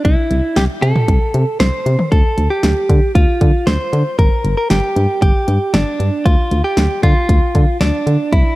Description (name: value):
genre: synth-pop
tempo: 116 BPM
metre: 4/4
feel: straight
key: D minor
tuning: A4 = 440 Hz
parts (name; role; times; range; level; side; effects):
- direct-recorded clean electric guitar; melody; 0.0-8.6 s; D4 to C5; -18 LUFS; right 1 dB; analog delay
- solid FM bass; bass; 0.0-8.4 s; G1 to D3; -16 LUFS; equal; none
- pop drum kit; drums; 0.0-8.4 s; hi-hat, kick drum, snare drum, toms; -15 LUFS; equal; none
room: little or no reverb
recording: dark, warm production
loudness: -12 LUFS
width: side -18 dB against mid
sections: 0.0-8.6 A section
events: none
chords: 0.0 Am/C; 2.1 Dm; 4.2 G5; 6.3 Dm